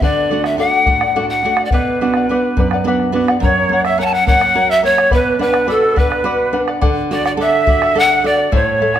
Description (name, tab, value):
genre	andean folk, Andean ensemble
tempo	70 BPM (dotted quarters)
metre	6/8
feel	straight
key	B minor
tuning	A4 = 441 Hz
part	bright polished pan flute	melody	0.0-9.0 s	A4 to A5	-15 LUFS	left 1 dB	none
part	charango	accompaniment	0.0-9.0 s	E4 to A5	-21 LUFS	left 6 dB	none
part	nylon-string guitar	accompaniment	0.0-9.0 s	F#2 to A4	-20 LUFS	right 5 dB	none
part	bombo	percussion	0.0-9.0 s	none	-20 LUFS	equal	none
part	quena	second line	3.4-9.0 s	A4 to A5	-20 LUFS	right 4 dB	none
room	moderate recital hall reverb, RT60 1.4 s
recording	none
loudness	-12 LUFS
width	side -10 dB against mid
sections	0.0-3.4 A section; 3.4-9.0 A section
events	none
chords	0.0 D; 1.7 Bm; 3.4 F#; 5.1 Bm; 6.8 D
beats	| 0.02 0.87 | 1.72 2.57 | 3.42 4.27 | 5.12 5.97 | 6.82 7.67 | 8.53